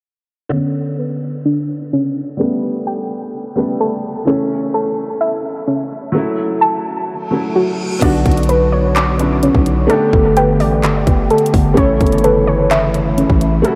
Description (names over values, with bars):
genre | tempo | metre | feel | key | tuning
hip hop, trap | 128 BPM | 4/4 | half-time | B minor | A4 = 440 Hz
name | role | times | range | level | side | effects
felt-muted upright piano | accompaniment | 0.5-13.8 s | D3 to A4 | -22 LUFS | equal | subtle chorus, low-pass filter
soft round pluck | arpeggios | 0.5-13.6 s | C#4 to D6 | -21 LUFS | equal | chorus, low-pass filter, diffuse ambient delay
reverse cymbal | sound effects | 7.3-8.0 s | none | -35 LUFS | equal | none
warbly dusty pluck | second line | 8.0-13.8 s | A4 to D5 | -21 LUFS | equal | chorus, diffuse ambient delay
pipe organ, stopped flute | sustained chords | 8.0-13.8 s | C#3 to G4 | -21 LUFS | equal | none
growling 808-style bass | bass | 8.0-13.6 s | G1 to B1 | -19 LUFS | equal | none
trap drum kit | drums | 8.0-13.8 s | crash cymbal, handclaps, hi-hat, kick drum | -20 LUFS | equal | none
room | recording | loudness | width
wet huge ambient reverb, RT60 8.0 s | dreamy mix soaked in reverb | -15 LUFS | mono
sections
0.5-8.0 A section; 8.0-13.8 B section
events
filter sweep 0.5-8.0; reverse cymbal 7.3-8.0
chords
0.5 Bmadd9; 2.4 Gadd9; 4.3 A; 6.1 F#m7; 8.0 Bmadd9; 9.9 Gadd9; 11.8 A